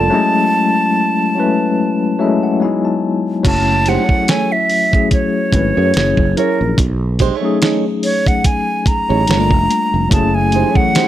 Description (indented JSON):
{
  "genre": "R&B, neo-soul",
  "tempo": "72 BPM",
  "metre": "4/4",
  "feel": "swing 55% on 16ths",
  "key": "F# dorian",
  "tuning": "A4 = 440 Hz",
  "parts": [
    { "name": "breathy silver concert flute", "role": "melody", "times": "0.0-11.1 s", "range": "A#4 to A#5", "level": "-17 LUFS", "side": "right 1 dB", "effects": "slapback echo" },
    { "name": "nylon-string guitar", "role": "second line", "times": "0.0-11.1 s", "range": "A3 to D5", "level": "-20 LUFS", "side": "right 9 dB", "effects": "none" },
    { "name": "tine electric piano", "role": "accompaniment", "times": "0.0-11.1 s", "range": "F#3 to A5", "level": "-16 LUFS", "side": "left 4 dB", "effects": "medium tremolo" },
    { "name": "sustaining fretless electric bass", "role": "bass", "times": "0.0-10.6 s", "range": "F1 to F#2", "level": "-17 LUFS", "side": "right 1 dB", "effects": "none" },
    { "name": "dusty soul sampler-style drum kit", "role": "drums", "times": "3.4-11.1 s", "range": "crash cymbal, hi-hat, kick drum, snare drum", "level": "-16 LUFS", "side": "right 1 dB", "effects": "none" },
    { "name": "hollow soft pad", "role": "sustained chords", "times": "10.1-11.1 s", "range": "E3 to F#4", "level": "-26 LUFS", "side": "equal", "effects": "none" }
  ],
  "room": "little or no reverb",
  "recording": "none",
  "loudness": "-12 LUFS",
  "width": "side -12 dB against mid",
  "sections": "0.0-3.4 A section; 3.4-11.1 B section",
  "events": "break 0.1-3.4; tine electric piano fill 1.8-3.4; flute solo 3.4-11.1",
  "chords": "0.1 F#m9; 2.6 Emaj9; 3.4 F#m9; 5.9 F#9; 6.8 B13; 9.3 Gm9; 10.1 F#m9"
}